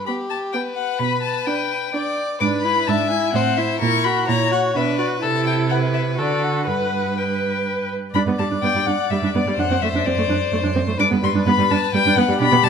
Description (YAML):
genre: quick classical-period movement for string quartet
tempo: 127 BPM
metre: 3/4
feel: rubato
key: G major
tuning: A4 = 440 Hz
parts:
  - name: rich violin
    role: second line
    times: 0.0-12.7 s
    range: G4 to E5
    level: -25 LUFS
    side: left 4 dB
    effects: none
  - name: rich violin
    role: melody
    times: 0.1-12.7 s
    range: D5 to D6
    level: -22 LUFS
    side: left 9 dB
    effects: none
  - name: rich viola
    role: accompaniment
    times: 0.1-12.7 s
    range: G3 to B4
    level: -24 LUFS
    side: right 3 dB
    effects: none
  - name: rich cello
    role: bass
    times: 1.0-12.7 s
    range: F#2 to D3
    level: -23 LUFS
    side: right 5 dB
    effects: none
room: moderate recital hall reverb, RT60 1.9 s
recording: none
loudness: -18 LUFS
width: side -6 dB against mid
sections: 0.0-8.1 A section; 8.1-12.7 A section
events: none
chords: 0.0 G; 1.0 G/B; 2.4 E7/G#; 3.3 Am; 3.8 F#7/A#; 4.8 Bm; 5.2 Am/C; 6.2 D; 6.7 G; 8.1 G5; 9.6 D7/F#; 11.0 G